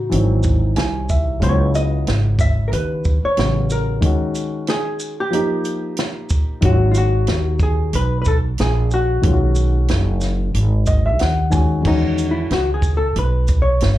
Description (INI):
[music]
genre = hip hop, jazz-hop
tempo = 92 BPM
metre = 4/4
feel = swing 58% on 16ths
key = E major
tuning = A4 = 441 Hz
[part]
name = hollow-body jazz guitar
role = melody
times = 0.0-14.0 s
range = D#4 to E5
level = -22 LUFS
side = left 1 dB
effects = slapback echo
[part]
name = dark baby grand piano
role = accompaniment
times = 0.0-14.0 s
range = C#3 to G#5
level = -23 LUFS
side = left 1 dB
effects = slapback echo
[part]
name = upright bass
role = bass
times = 0.0-14.0 s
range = F#1 to E2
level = -18 LUFS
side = equal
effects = none
[part]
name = compact cocktail drum kit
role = drums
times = 0.1-14.0 s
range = crash cymbal, hi-hat, kick drum, shaker, snare drum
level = -20 LUFS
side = right 1 dB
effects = none
[sound]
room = little or no reverb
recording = live gig heard through the venue's PA, club reverb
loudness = -16 LUFS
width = side -14 dB against mid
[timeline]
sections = 0.0-11.9 A section; 11.9-14.0 B section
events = grand piano fill 0.4-1.4, 10.5-11.9; break 4.0-6.6; hollow-body jazz guitar solo 11.9-14.0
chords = 0.1 G#7b13; 1.4 C#m7; 4.0 F#69/D#; 5.3 D#; 6.6 G#m7; 9.2 B69; 11.9 Emaj7